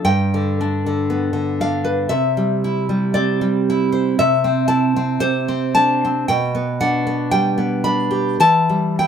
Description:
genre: romantic piece for solo classical guitar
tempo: 58 BPM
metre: 2/4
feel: uneven beats, rubato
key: C major, G major from 4.2 s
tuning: A4 = 439 Hz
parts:
  - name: nylon-string guitar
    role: solo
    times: 0.0-9.1 s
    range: G2 to B5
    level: -16 LUFS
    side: equal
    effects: none
room: moderate studio reverb, RT60 0.6 s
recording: band playing live in one room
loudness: -16 LUFS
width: side -8 dB against mid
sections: 0.0-9.1 A section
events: none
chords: 0.1 G; 2.1 C; 4.2 Am/C; 5.2 D5/C; 6.3 G/B; 8.4 Em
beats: | 0.08 1.11 | 2.11 3.16 | 4.18 5.21 | 6.27 7.34 | 8.40

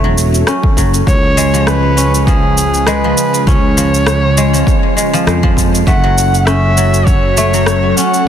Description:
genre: organic downtempo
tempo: 100 BPM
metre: 4/4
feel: swing 55% on 16ths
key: unclear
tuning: A4 = 438 Hz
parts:
  - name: ethereal airy pad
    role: sustained chords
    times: 0.0-8.3 s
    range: C#3 to A4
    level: -20 LUFS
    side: equal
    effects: ensemble chorus, built-in reverb, sidechain pumping
  - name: guzheng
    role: arpeggios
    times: 0.0-8.3 s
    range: E#3 to C#4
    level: -16 LUFS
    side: equal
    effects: ping-pong delay
  - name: sustaining fretless electric bass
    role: bass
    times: 0.0-7.9 s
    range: E1 to E#2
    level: -14 LUFS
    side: equal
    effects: tube saturation
  - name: electronic shaker and rim click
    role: drums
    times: 0.2-8.2 s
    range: none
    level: -19 LUFS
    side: equal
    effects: none
  - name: electronic kick drum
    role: drums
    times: 0.6-7.2 s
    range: none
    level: -13 LUFS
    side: equal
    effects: overdrive
  - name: warm kamancheh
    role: melody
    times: 1.1-8.3 s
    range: G#4 to F#5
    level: -17 LUFS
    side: equal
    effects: ping-pong delay
room: light reverb, digital ambience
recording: dense, heavily limited modern master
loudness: -9 LUFS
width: side -9 dB against mid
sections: 0.0-8.3 A section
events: none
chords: 0.0 F#m7; 1.1 C#7; 5.9 F#m7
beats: 0.47 | 1.07 1.67 2.27 2.87 | 3.47 4.07 4.67 5.27 | 5.87 6.47 7.07 7.67 | 8.27

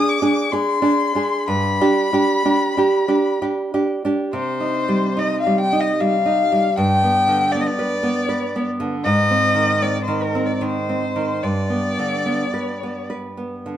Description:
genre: romantic duo for violin and classical guitar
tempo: 60-80 BPM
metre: 3/4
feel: rubato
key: C minor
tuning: A4 = 436 Hz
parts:
  - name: clear violin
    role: melody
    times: 0.0-13.1 s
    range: Bb4 to Eb6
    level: -20 LUFS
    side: left 3 dB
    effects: none
  - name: nylon-string guitar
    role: accompaniment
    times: 0.0-13.8 s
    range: G2 to B4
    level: -19 LUFS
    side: right 2 dB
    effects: none
room: wet spring reverb, RT60 1.6 s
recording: heard from further back in the room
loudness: -17 LUFS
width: side -10 dB against mid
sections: 0.0-4.3 A section; 4.3-13.8 B section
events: none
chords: 0.0 D7(b5, no3); 1.5 G; 4.3 Cm; 6.8 G; 9.0 Ab; 11.4 G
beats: 0.54 | 1.49 2.47 3.43 | 4.34 5.18 5.99 | 6.77 7.52 8.29 | 9.04 9.81 10.61 | 11.41 12.26 13.09

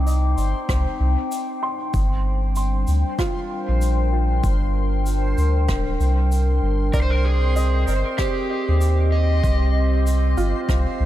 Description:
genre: ambient dub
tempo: 96 BPM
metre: 4/4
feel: swing 60% on 16ths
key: unclear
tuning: A4 = 440 Hz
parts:
  - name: warbly tape-like pad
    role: sustained chords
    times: 0.0-11.1 s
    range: G3 to D6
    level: -27 LUFS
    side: left 1 dB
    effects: chorus, built-in reverb
  - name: felt-muted upright piano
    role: arpeggios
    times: 0.0-11.1 s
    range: F4 to C6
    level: -32 LUFS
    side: right 3 dB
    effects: tape echo
  - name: soft dub sub bass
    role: bass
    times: 0.0-11.1 s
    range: D1 to Eb2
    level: -19 LUFS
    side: equal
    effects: tube saturation
  - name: backwards swelling texture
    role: texture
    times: 0.0-11.1 s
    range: C5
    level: -32 LUFS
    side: right 2 dB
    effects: built-in reverb
  - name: shaker and rim click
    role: drums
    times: 0.1-10.8 s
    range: none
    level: -35 LUFS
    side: right 1 dB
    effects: dub echo
  - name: electronic kick drum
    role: drums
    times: 0.7-10.8 s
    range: none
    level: -24 LUFS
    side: equal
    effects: none
  - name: overdriven slide guitar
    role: melody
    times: 6.9-10.0 s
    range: G4 to Eb5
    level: -27 LUFS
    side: equal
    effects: tape echo
room: studio ambience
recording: none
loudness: -18 LUFS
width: side -13 dB against mid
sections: 0.0-11.1 A section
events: none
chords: 0.0 Gm; 6.9 Cm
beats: 0.06 0.69 1.31 | 1.94 2.56 3.19 3.81 | 4.44 5.06 5.69 6.31 | 6.94 7.56 8.19 8.81 | 9.44 10.06 10.69

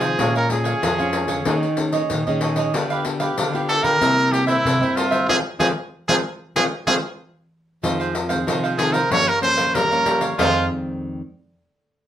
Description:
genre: samba and choro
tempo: 94 BPM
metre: 4/4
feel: straight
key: F minor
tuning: A4 = 440 Hz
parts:
  - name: brilliant trumpet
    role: melody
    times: 0.0-10.7 s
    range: E4 to Db5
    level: -20 LUFS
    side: right 1 dB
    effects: none
  - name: cavaquinho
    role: accompaniment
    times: 0.0-10.6 s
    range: D4 to Ab5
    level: -25 LUFS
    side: right 4 dB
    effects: none
  - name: nylon-string guitar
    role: accompaniment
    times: 0.0-11.2 s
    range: F2 to Ab4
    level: -26 LUFS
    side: left 2 dB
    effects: none
  - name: nylon-string guitar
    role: bass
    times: 0.0-10.7 s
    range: F2 to C4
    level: -25 LUFS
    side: equal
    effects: none
  - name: pandeiro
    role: percussion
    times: 0.0-10.5 s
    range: none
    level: -26 LUFS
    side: left 4 dB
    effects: none
room: wet studio reverb, RT60 0.6 s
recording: band playing live in one room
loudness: -18 LUFS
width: side -11 dB against mid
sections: 0.0-7.8 A section; 7.8-10.4 B section; 10.4-12.1 C section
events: band accent 5.3-7.8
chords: 0.2 Bbm7; 1.5 Eb7sus4; 2.7 G7/D; 4.0 C7; 5.3 Fm; 7.8 Fm7; 9.1 Gm7b5; 10.4 Fm7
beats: | 0.19 0.83 1.47 2.10 | 2.74 3.38 4.02 4.65 | 5.29 5.93 6.56 7.20 | 7.84 8.47 9.11 9.75 | 10.38 11.02

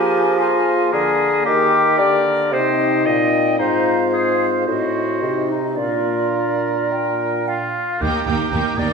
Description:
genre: classical, dramatic, fast romantic movement for symphony orchestra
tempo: 110 BPM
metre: 4/4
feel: uneven beats, rubato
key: Eb major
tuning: A4 = 441 Hz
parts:
  - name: clear clarinet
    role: second line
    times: 0.0-7.4 s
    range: Eb4 to Eb5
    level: -20 LUFS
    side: left 2 dB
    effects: none
  - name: small flute group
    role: second line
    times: 0.0-8.0 s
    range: D5 to Ab5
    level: -25 LUFS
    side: left 3 dB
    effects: none
  - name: warm oboe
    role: second line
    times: 0.0-8.9 s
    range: F4 to Eb5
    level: -24 LUFS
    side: right 3 dB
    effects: none
  - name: warm bassoon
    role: accompaniment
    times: 0.0-7.8 s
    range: Ab2 to F3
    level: -21 LUFS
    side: right 3 dB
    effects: none
  - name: dark French horn section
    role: sustained chords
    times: 0.0-7.8 s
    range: Bb3 to Ab4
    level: -23 LUFS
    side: left 4 dB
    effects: none
  - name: clear symphonic violin section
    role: melody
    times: 8.0-8.9 s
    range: G5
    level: -29 LUFS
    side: left 3 dB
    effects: none
  - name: warm symphonic violin section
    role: second line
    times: 8.0-8.9 s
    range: Eb4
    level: -27 LUFS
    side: left 2 dB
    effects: none
  - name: rich symphonic viola section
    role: accompaniment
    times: 8.0-8.9 s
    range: Bb3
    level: -26 LUFS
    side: right 2 dB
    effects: none
  - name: clear symphonic double bass section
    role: bass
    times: 8.0-8.9 s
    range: Eb2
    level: -24 LUFS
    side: right 3 dB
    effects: none
  - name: rich symphonic cello section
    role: bass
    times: 8.0-8.9 s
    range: Eb2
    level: -24 LUFS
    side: right 3 dB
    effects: none
room: wet scoring stage reverb, RT60 1.4 s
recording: minimal, uncompressed stereo recording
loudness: -16 LUFS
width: side -5 dB against mid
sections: 0.0-8.0 A section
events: none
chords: 0.0 Bb7/F; 1.5 Eb; 2.5 Cm; 3.6 Fm7/Ab; 4.7 Adim7; 5.8 Bb; 8.0 Eb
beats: 0.40 0.93 | 1.46 1.99 2.52 3.06 | 3.59 4.12 4.66 5.21 | 5.77 6.34 6.91 7.48 | 8.03 8.53

